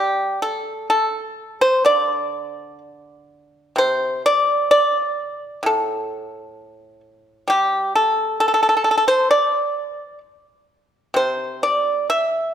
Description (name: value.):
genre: chinese traditional, Chinese solo plucked strings.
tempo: 64 BPM.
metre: 4/4.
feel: rubato.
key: D shang mode.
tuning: A4 = 440 Hz.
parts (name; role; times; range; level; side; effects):
pipa; solo; 0.0-12.5 s; A2 to E5; -17 LUFS; equal; none.
room: moderate recital hall reverb, RT60 1.5 s.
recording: none.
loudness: -17 LUFS.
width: side -9 dB against mid.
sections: 0.0-12.5 A section.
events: none.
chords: none.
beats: 0.90 1.86 2.82 | 3.77 4.71 5.64 6.57 | 7.50 8.40 9.30 10.21 | 11.15 12.10.